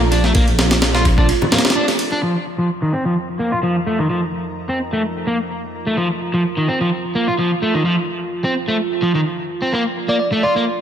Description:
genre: breakbeat, breaks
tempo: 128 BPM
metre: 4/4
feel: swing 53% on 16ths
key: F mixolydian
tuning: A4 = 440 Hz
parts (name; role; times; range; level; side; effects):
- dark analog pad; sustained chords; 0.0-10.8 s; F3 to Bb5; -26 LUFS; right 5 dB; chorus, vintage 12-bit sampler grit, sidechain pumping
- dark detuned saw bass; bass; 0.0-1.3 s; Bb1; -18 LUFS; equal; none
- crunchy overdriven guitar; riff; 0.1-10.6 s; Eb3 to F4; -18 LUFS; equal; tube saturation, low-pass filter, dub echo
- breakbeat sampler-style drum kit; drums; 0.1-2.1 s; kick drum, ride cymbal, snare drum; -17 LUFS; equal; dub echo
- congas and bongos; percussion; 0.3-2.2 s; none; -27 LUFS; left 3 dB; none
- bell-like FM electric piano; melody; 10.1-10.6 s; D5; -19 LUFS; right 1 dB; chorus, phaser, old record sound, dub echo
room: moderate plate reverb, RT60 1.8 s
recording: echo-heavy mix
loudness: -16 LUFS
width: side -9 dB against mid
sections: 0.0-2.2 A section; 2.2-10.8 B section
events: break 1.3-2.2; filter sweep on overdriven electric guitar 2.2-10.8; filter sweep on analog synth pad 2.2-10.8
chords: 0.0 Bbmaj7; 2.2 F7sus4; 9.7 Bbmaj7

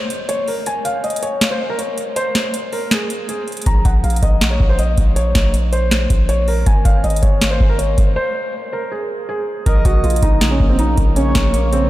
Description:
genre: hip hop, trap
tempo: 160 BPM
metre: 4/4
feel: half-time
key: Bb minor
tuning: A4 = 440 Hz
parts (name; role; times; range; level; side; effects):
- felt-muted upright piano; melody; 0.0-11.9 s; C4 to Bb5; -21 LUFS; equal; low-pass filter, tape echo
- booming analog drum machine; drums; 0.1-11.8 s; hi-hat, kick drum, snare drum; -17 LUFS; equal; none
- long sustained 808-style bass; bass; 3.7-11.9 s; Ab1 to Bb1; -17 LUFS; equal; none
- breathy flute-like synth lead; second line; 9.7-11.9 s; Db5 to Eb5; -23 LUFS; right 1 dB; chorus, tape echo
- sweeping resonant pad; sustained chords; 9.7-11.9 s; Db3 to Bb3; -24 LUFS; equal; chorus
room: moderate cathedral reverb, RT60 6.1 s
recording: dreamy mix soaked in reverb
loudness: -14 LUFS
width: side -16 dB against mid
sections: 0.0-9.7 A section; 9.7-11.9 B section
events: break 0.0-3.7, 8.2-9.7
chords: 0.0 N.C.; 3.7 Bbmadd9; 6.7 N.C.; 9.7 Bbm

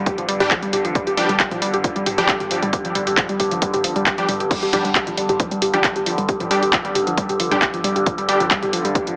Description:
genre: driving peak-time techno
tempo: 135 BPM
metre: 4/4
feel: straight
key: unclear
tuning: A4 = 440 Hz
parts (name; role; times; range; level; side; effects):
- warbly dusty pluck; riff; 0.0-9.2 s; F3 to G4; -25 LUFS; equal; chorus, cassette tape, sidechain pumping, digital delay
- growling 808-style bass; bass; 0.0-9.2 s; G1; -43 LUFS; equal; none
- overtone-sweeping drone; drone; 0.0-9.2 s; G2 to D3; -29 LUFS; equal; chorus, built-in reverb, phaser, sidechain pumping
- electronic kick drum; drums; 0.1-9.0 s; none; -27 LUFS; equal; none
- techno drum kit; drums; 0.1-9.2 s; crash cymbal, handclaps, hi-hat, toms; -24 LUFS; equal; sidechain pumping on hats, sidechain pumping on toms, sidechain pumping on cymbals
- supersaw stab; stabs; 0.4-8.5 s; G3 to G4; -25 LUFS; equal; sidechain pumping, dub echo
room: light reverb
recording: heavily compressed radio sound, multiband compression, small speaker sound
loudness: -19 LUFS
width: mono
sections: 0.0-9.2 A section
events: none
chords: 0.0 G5

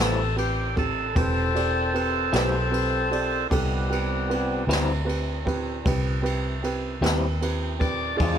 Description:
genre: slow blues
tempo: 51 BPM (dotted quarters)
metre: 12/8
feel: straight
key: A minor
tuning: A4 = 438 Hz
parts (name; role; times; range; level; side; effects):
- electric guitar through a small old amp; accompaniment; 0.0-8.4 s; A2 to F4; -27 LUFS; left 4 dB; tremolo
- warm upright piano; accompaniment; 0.0-8.4 s; C4 to D5; -30 LUFS; right 4 dB; none
- overdriven tonewheel organ; sustained chords; 0.0-8.4 s; C3 to D5; -26 LUFS; left 1 dB; slow rotary speaker
- vintage muted fingered electric bass; bass; 0.0-8.4 s; E1 to E2; -27 LUFS; equal; none
- jazz brush drum kit; drums; 0.0-8.4 s; kick drum, ride cymbal, snare drum; -29 LUFS; equal; none
room: little or no reverb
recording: none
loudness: -22 LUFS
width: side -8 dB against mid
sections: 0.0-8.4 A section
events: tonewheel organ solo 0.0-8.4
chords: 0.0 Am7

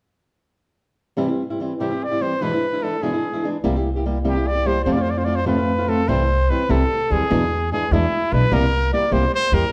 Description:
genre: mexican folk, mariachi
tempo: 98 BPM (dotted quarters)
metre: 6/8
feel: rubato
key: C major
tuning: A4 = 444 Hz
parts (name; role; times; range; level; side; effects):
- flamenco guitar; accompaniment; 1.2-9.6 s; E2 to G4; -24 LUFS; equal; none
- bright trumpet; melody; 1.8-9.7 s; E4 to D5; -24 LUFS; equal; none
- upright bass; bass; 3.6-9.6 s; B1 to F2; -24 LUFS; equal; none
room: wet recital hall reverb, RT60 1.6 s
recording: none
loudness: -20 LUFS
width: mono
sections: 1.2-6.1 A section; 6.1-9.7 B section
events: none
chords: 1.2 C; 2.4 E7; 3.6 C7; 4.9 F; 6.1 C; 7.3 E7; 8.5 C7

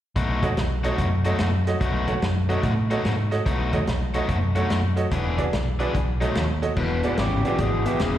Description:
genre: electric blues shuffle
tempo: 145 BPM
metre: 4/4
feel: swing 65% on 8ths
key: unclear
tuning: A4 = 440 Hz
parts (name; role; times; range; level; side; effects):
- crunchy overdriven guitar; riff; 0.2-8.2 s; E2 to G#4; -27 LUFS; left 4 dB; spring reverb, slapback echo
- vintage muted fingered electric bass; bass; 0.2-8.2 s; E1 to A2; -24 LUFS; equal; none
- warm soul drum kit; drums; 0.2-8.1 s; crash cymbal, hi-hat, kick drum, snare drum; -29 LUFS; equal; slapback echo
- bright concert grand piano; accompaniment; 0.4-7.9 s; F#4 to F#5; -29 LUFS; right 6 dB; slapback echo
- mellow tenor saxophone; melody; 6.8-8.2 s; G4 to B4; -28 LUFS; right 2 dB; slapback echo
room: light reverb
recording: live gig heard through the venue's PA, recital hall reverb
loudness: -21 LUFS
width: side -12 dB against mid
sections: 0.2-6.8 A section; 6.8-8.2 B section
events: none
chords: 0.2 B7; 5.1 E7; 5.9 B7; 6.8 E

